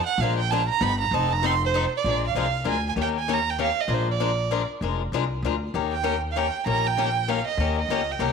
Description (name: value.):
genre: acoustic string swing (jazz manouche).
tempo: 194 BPM.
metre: 3/4.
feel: swing 59% on 8ths.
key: Bb mixolydian.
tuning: A4 = 436 Hz.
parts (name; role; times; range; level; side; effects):
warm violin; melody; 0.0-8.3 s; C5 to C6; -25 LUFS; right 9 dB; none.
picked swing-style acoustic guitar; accompaniment; 0.2-8.3 s; Eb3 to Bb4; -27 LUFS; left 12 dB; none.
upright bass; bass; 0.2-8.3 s; F1 to Eb2; -27 LUFS; left 1 dB; none.
room: moderate echo chamber reverb, RT60 1.6 s, studio ambience.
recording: 1960s-style stereo with parts hard left and right.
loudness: -22 LUFS.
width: side -6 dB against mid.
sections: 0.0-2.0 A section; 2.0-8.3 B section.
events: violin solo 0.0-2.0.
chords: 0.2 Bb7; 0.8 G7alt; 1.1 F7; 2.0 Bb7; 3.0 Eb7; 3.9 Bb7; 5.7 Eb7.